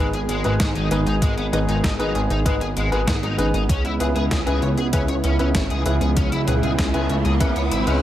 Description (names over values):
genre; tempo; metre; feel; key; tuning
synthwave; 97 BPM; 4/4; straight; G# minor; A4 = 440 Hz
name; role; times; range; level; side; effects
warm analog pad; sustained chords; 0.0-8.0 s; C#3 to G#4; -25 LUFS; right 1 dB; chorus, sidechain pumping, shimmer reverb
biting overdriven guitar; riff; 0.0-7.9 s; G#3 to C#5; -28 LUFS; left 2 dB; ensemble chorus, tape echo, shimmer reverb
clear concert grand piano; stabs; 0.0-8.0 s; G#2 to B4; -26 LUFS; left 1 dB; tape echo, shimmer reverb
chorused synth bass; bass; 0.0-8.0 s; G#1 to G#2; -23 LUFS; equal; sidechain pumping
clean 12-bit digital drum machine; drums; 0.1-8.0 s; hi-hat, snare drum, toms; -28 LUFS; equal; overdrive, gated reverb
electronic kick drum; drums; 0.6-7.5 s; none; -22 LUFS; equal; overdrive
riser; sound effects; 5.2-8.0 s; none; -30 LUFS; equal; none
room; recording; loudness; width
light reverb, digital ambience; none; -18 LUFS; side -12 dB against mid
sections
0.0-8.0 A section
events
riser 5.2-8.0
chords
0.0 G#m; 3.7 C#m7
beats
0.60 | 1.22 1.84 2.46 3.08 | 3.69 4.31 4.93 5.55 | 6.17 6.79 7.41